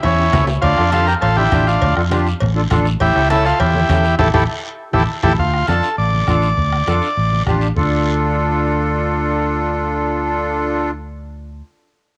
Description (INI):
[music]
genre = latin, cumbia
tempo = 202 BPM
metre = 4/4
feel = straight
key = D harmonic minor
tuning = A4 = 439 Hz
[part]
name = overdriven combo organ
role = melody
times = 0.0-7.4 s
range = C#4 to D5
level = -20 LUFS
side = equal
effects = spring reverb, cassette tape, plate reverb
[part]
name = fingered electric bass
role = bass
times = 0.0-11.6 s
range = A1 to F2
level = -21 LUFS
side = equal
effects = none
[part]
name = congas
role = percussion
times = 0.0-7.8 s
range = none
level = -29 LUFS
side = equal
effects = none
[part]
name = cowbell and timbales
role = percussion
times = 0.0-5.3 s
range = none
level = -29 LUFS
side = equal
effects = none
[part]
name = guiro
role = percussion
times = 0.0-7.8 s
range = none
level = -35 LUFS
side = equal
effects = none
[part]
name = accordion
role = accompaniment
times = 0.2-10.9 s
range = C#4 to A4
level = -23 LUFS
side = equal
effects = light tremolo tuning, cassette tape, plate reverb
[part]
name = bombo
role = percussion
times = 0.3-7.8 s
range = none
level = -24 LUFS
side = equal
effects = none
[sound]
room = light reverb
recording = home recording on cassette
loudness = -16 LUFS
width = mono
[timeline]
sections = 0.0-5.4 A section; 5.4-7.8 B section; 7.8-10.1 C section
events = drum fill 0.0-0.6, 4.9-5.4; band accent 4.2-5.4; accordion fill 4.5-5.4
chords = 0.0 A; 0.6 Dm; 3.0 A7; 5.4 Dm